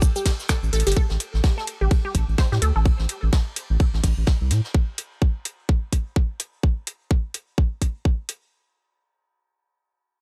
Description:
minimal techno; 127 BPM; 4/4; swing 59% on 16ths; A minor; A4 = 441 Hz
booming analog drum machine; drums; 0.0-8.4 s; finger snaps, hi-hat, ride cymbal, shaker; -30 LUFS; equal; overdrive
electronic kick drum; drums; 0.0-8.2 s; -22 LUFS; equal
jazz brush drum kit; drums; 0.0-4.7 s; hi-hat, ride cymbal, snare drum; -39 LUFS; equal; sidechain pumping on cymbals, high-pass filter on cymbals, sidechain pumping on hats, high-pass filter on hats, high-pass filter on snare, high-pass filter on room
resonant blip pluck; riff; 0.2-2.8 s; G4 to C5; -32 LUFS; equal; phaser, sidechain pumping, tape echo
round analog bass; bass; 0.6-4.6 s; G1 to A2; -23 LUFS; equal; sidechain pumping
studio ambience; dry, gritty hardware recording; -23 LUFS; mono
1.0-8.5 A section
drum fill 0.7; filter sweep on synth arpeggio sound 1.0-2.9

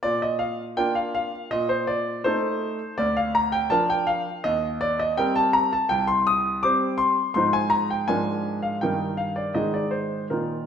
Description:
classical-period piano sonatina; 82 BPM; 2/4; straight; Bb major; A4 = 441 Hz
clear concert grand piano; solo; 0.0-10.7 s; C2 to Eb6; -22 LUFS; equal
wet recital hall reverb, RT60 1.4 s; minimal, uncompressed stereo recording; -21 LUFS; side -8 dB against mid
0.0-10.7 A section
0.0 Bb; 1.5 Adim/Bb; 3.0 Bb/D; 4.4 Cm7/Eb; 5.9 C5; 7.3 Fm7/Ab; 8.1 Bb7/Ab; 8.8 Eb/G; 9.5 Ab

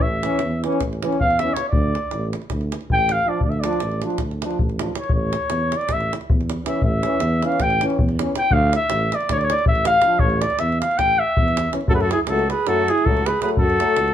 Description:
balkan folk, Balkan brass band; 319 BPM (eighths); 9/8; straight; A4 = 440 Hz
clear flugelhorn; melody; 0.0-14.1 s; G#4 to G5; -20 LUFS; left 1 dB
clear trombone; accompaniment; 0.0-14.0 s; A3 to D4; -27 LUFS; left 6 dB
mellow tuba; bass; 0.0-14.1 s; A1 to F#2; -25 LUFS; right 1 dB
davul; percussion; 0.0-14.1 s; -24 LUFS; equal
clear euphonium; accompaniment; 0.2-13.9 s; E3 to F#3; -28 LUFS; right 6 dB
warm alto saxophone; second line; 11.9-14.1 s; E4 to G#4; -24 LUFS; right 3 dB
moderate large studio reverb, RT60 0.8 s; band playing live in one room; -18 LUFS; side -10 dB against mid
0.0-11.9 A section; 11.9-14.1 B section
flugelhorn solo 0.0-11.9
0.0 A; 1.7 Dm; 5.1 A; 8.5 Dm; 10.2 A5; 11.9 F#m

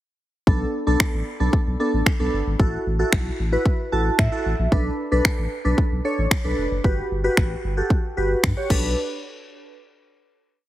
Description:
dance-pop; 113 BPM; 4/4; straight; B minor; A4 = 440 Hz
glassy digital keys; accompaniment; 0.5-8.9 s; B3 to A5; -24 LUFS; right 1 dB; chorus, sidechain pumping
saturated sub bass; bass; 0.5-8.9 s; E#1 to A2; -24 LUFS; equal; sidechain pumping
house drum kit; drums; 0.5-8.8 s; crash cymbal, finger snaps, kick drum; -21 LUFS; equal
light reverb, digital ambience; heavily compressed radio sound; -19 LUFS; side -14 dB against mid
0.5-9.0 verse; 9.0-10.7 final hit
synth keys fill 3.7-4.7
0.5 Bm7; 2.6 F#m7/A; 4.7 Bm7; 6.8 Gmaj7; 8.7 Bm7; 9.0 N.C.

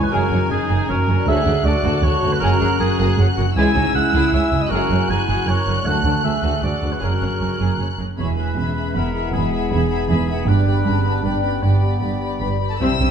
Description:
cinematic, heroic adventure film score; 157 BPM; 3/4; straight; E lydian; A4 = 440 Hz
warm symphonic violin section; melody; 0.0-13.1 s; G#5 to F#6; -28 LUFS; left 4 dB
clear clarinet; second line; 0.0-13.1 s; B3 to A#4; -30 LUFS; left 4 dB
mellow hollow flute section; second line; 0.0-13.1 s; A4 to A#5; -30 LUFS; left 1 dB
warm cor anglais; second line; 0.0-13.1 s; G#4 to G#5; -25 LUFS; right 2 dB
rich chamber viola section; accompaniment; 0.0-13.1 s; G3 to A#4; -28 LUFS; right 2 dB
concert harp; arpeggios; 0.0-13.1 s; E2 to G#5; -28 LUFS; left 10 dB
dark symphonic cello section; bass; 0.0-13.1 s; C#2 to C3; -23 LUFS; right 2 dB
dark symphonic violin section; second line; 0.1-13.1 s; D4 to E5; -31 LUFS; left 2 dB
clear French horn section; sustained chords; 0.1-13.1 s; G3 to G#4; -34 LUFS; left 6 dB
dark trombone section; sustained chords; 0.1-7.1, 12.8-13.1 s; E3 to D4; -32 LUFS; right 1 dB
rich symphonic double bass section; bass; 0.1-13.1 s; E1 to D2; -21 LUFS; right 3 dB
timpani; percussion; 8.2-8.7 s; barely audible
moderate scoring stage reverb, RT60 2.1 s; dark, warm production; -16 LUFS; side -7 dB against mid
0.0-8.2 A section; 8.2-12.8 B section
0.1 F#add9; 1.3 D; 2.4 F#add9; 3.6 C#m; 4.7 F#add9; 5.9 D; 7.0 F#add9; 8.2 E; 10.5 G

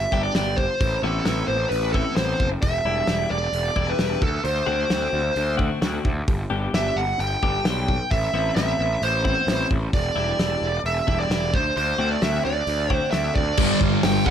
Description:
quiet-loud alternative rock; 131 BPM; 4/4; straight; G major; A4 = 442 Hz
smooth overdriven lead guitar; melody; 0.0-14.3 s; A4 to G5; -24 LUFS; right 1 dB; tape echo
fuzz picked electric bass; bass; 0.0-14.3 s; E1 to D2; -26 LUFS; equal; overdrive
twelve-string electric guitar; arpeggios; 0.1-13.4 s; D3 to G4; -28 LUFS; left 5 dB
loose indie drum kit; drums; 0.1-14.3 s; crash cymbal, hi-hat, kick drum, snare drum; -25 LUFS; equal
fuzz guitar; riff; 13.6-14.3 s; G2 to G3; -19 LUFS; equal; distortion
light reverb; -20 LUFS; side -9 dB against mid
0.0-13.6 A section
0.0 G; 0.8 Amadd9; 2.6 Em7; 4.2 D7; 6.3 G; 8.1 Amadd9; 9.9 Em7; 11.5 D7; 13.6 G5

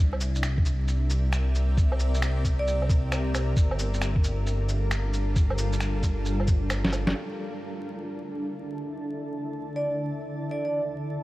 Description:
future garage; 134 BPM; 4/4; swing 65% on 16ths; D minor; A4 = 438 Hz
granular cloud pad; sustained chords; 0.0-11.2 s; D3 to A5; -33 LUFS; equal; built-in reverb, sidechain pumping
dark detuned saw bass; bass; 0.0-7.1 s; G1 to C2; -26 LUFS; equal; sidechain pumping
electronic woodblock, cabasa, shaker, finger snaps and snare drum; drums; 0.1-7.1 s; -32 LUFS; equal; low-pass filter on perc, studio reverb, low-pass filter on snare
electronic kick drum; drums; 0.6-6.6 s; -23 LUFS; equal; studio reverb
vibraphone with medium hard mallets; melody; 2.6-2.8, 9.8-10.7 s; D5; -31 LUFS; right 1 dB; tape echo
light reverb, digital ambience; vinyl crackle; -24 LUFS; side -18 dB against mid
0.0-7.2 A section; 7.2-11.2 B section
drum fill 6.8-7.2; filter sweep on ambient pad 7.2-11.2
0.0 C7; 3.6 Gm7; 7.2 Dsus2

